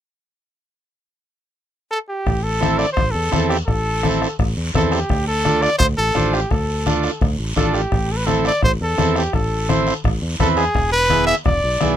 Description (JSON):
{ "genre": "latin, cumbia", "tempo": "170 BPM", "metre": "4/4", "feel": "straight", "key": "A minor", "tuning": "A4 = 440 Hz", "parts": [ { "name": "clear trumpet", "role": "melody", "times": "1.9-11.9 s", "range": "G4 to E5", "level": "-20 LUFS", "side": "equal", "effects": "none" }, { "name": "fingered electric bass", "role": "bass", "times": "2.3-12.0 s", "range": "E1 to E2", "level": "-22 LUFS", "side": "equal", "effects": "none" }, { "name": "bombo", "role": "percussion", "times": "2.3-12.0 s", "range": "none", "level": "-22 LUFS", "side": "left 1 dB", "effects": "none" }, { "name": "congas", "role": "percussion", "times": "2.3-12.0 s", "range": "none", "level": "-25 LUFS", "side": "left 4 dB", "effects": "none" }, { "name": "guiro", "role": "percussion", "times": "2.3-12.0 s", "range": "none", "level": "-31 LUFS", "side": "right 1 dB", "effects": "none" }, { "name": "overdriven combo organ", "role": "accompaniment", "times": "2.6-12.0 s", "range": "B3 to C5", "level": "-20 LUFS", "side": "right 4 dB", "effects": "none" } ], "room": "little or no reverb", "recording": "minimal, uncompressed stereo recording", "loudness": "-16 LUFS", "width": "side -10 dB against mid", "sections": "0.9-2.3 A section; 2.3-12.0 B section", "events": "none", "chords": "0.9 N.C.; 2.3 Am; 5.1 Dm; 7.9 Am; 10.7 E7" }